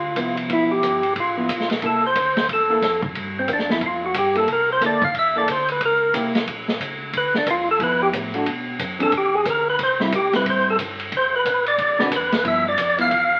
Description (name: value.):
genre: soul jazz organ trio.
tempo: 181 BPM.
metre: 4/4.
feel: swing 62% on 8ths.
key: G mixolydian.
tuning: A4 = 439 Hz.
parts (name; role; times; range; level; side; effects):
percussive tonewheel organ; melody; 0.0-13.4 s; C4 to F5; -21 LUFS; equal; slow rotary speaker, overdrive.
mellow tonewheel organ; bass; 0.0-13.4 s; F#1 to B2; -40 LUFS; equal; slow rotary speaker.
vintage hollow-body jazz guitar; accompaniment; 0.2-13.1 s; D3 to B4; -28 LUFS; equal; none.
vintage drum kit; drums; 0.2-13.2 s; hi-hat, kick drum, ride cymbal, snare drum; -28 LUFS; equal; none.
room: moderate studio reverb, RT60 0.9 s.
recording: very old 78 rpm record, vinyl crackle.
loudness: -21 LUFS.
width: mono.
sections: 0.0-13.4 A section.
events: tonewheel organ solo 0.0-13.4.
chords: 0.0 G13; 1.8 C13; 3.2 G7(no3); 4.5 C13; 5.8 C#dim7; 7.1 Dm69; 8.5 Bm; 9.1 E7#9; 9.8 Am7; 11.1 D13; 12.4 G6.